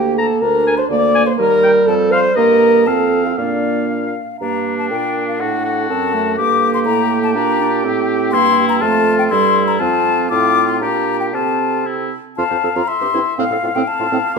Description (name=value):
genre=quick classical-period movement for wind quintet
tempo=122 BPM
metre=2/4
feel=rubato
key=Bb major, G minor from 4.4 s, F major from 8.3 s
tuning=A4 = 439 Hz
part: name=mellow hollow silver concert flute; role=melody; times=0.0-14.4 s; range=D5 to D6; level=-19 LUFS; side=left 9 dB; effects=none
part: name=warm French horn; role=accompaniment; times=0.0-14.2 s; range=C4 to D5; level=-18 LUFS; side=equal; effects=none
part: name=warm clarinet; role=accompaniment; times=0.0-14.2 s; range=G3 to C5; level=-21 LUFS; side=right 9 dB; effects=none
part: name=dark bassoon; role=bass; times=0.0-14.4 s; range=D2 to C3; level=-22 LUFS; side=right 2 dB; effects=none
part: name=clear oboe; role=second line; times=0.2-14.4 s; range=D4 to Bb5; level=-22 LUFS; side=left 2 dB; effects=none
room=moderate recital hall reverb, RT60 1.7 s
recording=minimal, uncompressed stereo recording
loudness=-13 LUFS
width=side -5 dB against mid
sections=0.0-4.4 A section; 4.4-12.4 B section; 12.4-14.4 C section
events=none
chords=0.4 Bb/D; 1.4 Eb; 1.9 F; 2.4 Eb/G; 2.9 F; 3.4 Bb; 4.4 Gm; 5.4 D7/A; 6.4 Gm; 7.4 Gm/Bb; 8.3 C7/G; 8.8 F; 9.3 Am7/G; 9.8 F; 10.3 F/A; 10.8 Gm/Bb; 11.3 F/C; 12.4 F; 12.9 C; 13.4 F/A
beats=| 0.41 0.90 | 1.39 1.87 | 2.36 2.87 | 3.38 3.90 | 4.41 4.91 | 5.40 5.89 | 6.38 6.86 | 7.35 7.84 | 8.33 8.81 | 9.31 9.80 | 10.30 10.81 | 11.34 11.86 | 12.38 12.89 | 13.39 13.88 | 14.37